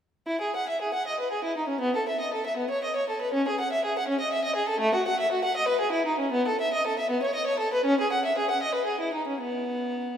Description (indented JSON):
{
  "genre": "classical, baroque-style suite movement for unaccompanied violin",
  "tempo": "79 BPM (dotted quarters)",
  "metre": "12/8",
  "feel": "rubato",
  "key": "E major",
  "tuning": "A4 = 440 Hz",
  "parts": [
    { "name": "warm violin", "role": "solo", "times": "0.3-10.2 s", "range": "A3 to F#5", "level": "-24 LUFS", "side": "equal", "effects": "none" }
  ],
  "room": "wet church reverb, RT60 3.5 s",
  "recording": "minimal, uncompressed stereo recording",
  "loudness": "-24 LUFS",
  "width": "side -8 dB against mid",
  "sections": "0.3-10.2 A section",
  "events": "none",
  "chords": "none",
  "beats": "| 0.27 1.06 1.82 2.58 | 3.34 4.09 4.83 5.57 | 6.34 7.10 7.85 8.61 | 9.39"
}